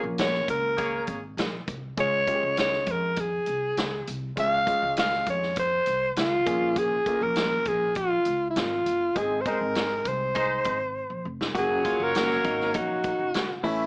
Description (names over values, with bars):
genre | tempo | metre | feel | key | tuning
uptempo 1960s-style soul | 100 BPM | 4/4 | straight | Db major | A4 = 440 Hz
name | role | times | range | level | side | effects
raspy alto saxophone | melody | 0.0-13.7 s | Fb4 to F5 | -24 LUFS | equal | none
warm grand piano | accompaniment | 0.0-13.9 s | E3 to Bb4 | -32 LUFS | equal | none
upright bass | bass | 0.0-13.9 s | F1 to F2 | -36 LUFS | equal | none
swinging big-band drum kit | drums | 0.2-13.8 s | hi-hat, kick drum, snare drum | -31 LUFS | equal | none
warm horn section | second line | 0.8-1.2, 9.4-13.9 s | Gb3 to E5 | -31 LUFS | equal | none
clean electric guitar | riff | 11.5-13.9 s | Eb4 to Gb4 | -31 LUFS | equal | none
room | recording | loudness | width
moderate club reverb, RT60 0.6 s | small speaker sound | -23 LUFS | side -33 dB against mid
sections
0.0-11.6 A section; 11.6-13.9 B section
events
band accent 0.0-2.0, 9.2-11.6; drum fill 11.0-11.6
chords
0.0 Bbm7; 2.0 Db; 6.5 Bbm7; 9.2 Ab; 11.6 Gb